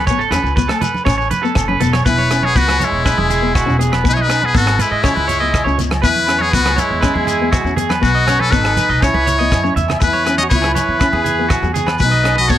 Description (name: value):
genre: highlife guitar band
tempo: 121 BPM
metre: 4/4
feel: straight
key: E major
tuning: A4 = 440 Hz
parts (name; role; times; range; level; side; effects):
- electric guitar at the edge of break-up; arpeggios; 0.0-12.6 s; F#4 to E5; -20 LUFS; right 4 dB; analog delay
- upright bass; bass; 0.0-12.6 s; E1 to G#2; -20 LUFS; equal; none
- nylon-string guitar; accompaniment; 0.1-12.6 s; G#3 to C#4; -23 LUFS; left 5 dB; none
- tight funk drum kit; drums; 0.1-12.6 s; hi-hat, kick drum, rim click; -20 LUFS; equal; none
- shekere; percussion; 0.1-12.6 s; none; -27 LUFS; left 4 dB; none
- agogo bells; percussion; 0.3-12.4 s; none; -27 LUFS; left 4 dB; none
- congas; percussion; 0.6-12.5 s; none; -25 LUFS; right 3 dB; none
- trumpet with metal mute; melody; 2.1-12.6 s; E4 to D#5; -18 LUFS; left 4 dB; none
- mellow trumpet; second line; 2.1-12.6 s; G#3 to F#4; -24 LUFS; right 5 dB; none
room: light reverb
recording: none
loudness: -13 LUFS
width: side -11 dB against mid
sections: 0.0-2.1 A section; 2.1-12.6 B section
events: drum fill 9.6-10.0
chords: 0.1 A; 2.1 E; 4.0 B; 5.0 C#madd9; 6.0 E; 8.0 B; 9.0 C#madd9; 10.0 E; 12.0 B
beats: | 0.08 0.57 1.07 1.56 | 2.06 2.56 3.05 3.55 | 4.04 4.54 5.04 5.54 | 6.04 6.53 7.03 7.53 | 8.03 8.52 9.02 9.52 | 10.01 10.51 11.01 11.51 | 12.00 12.50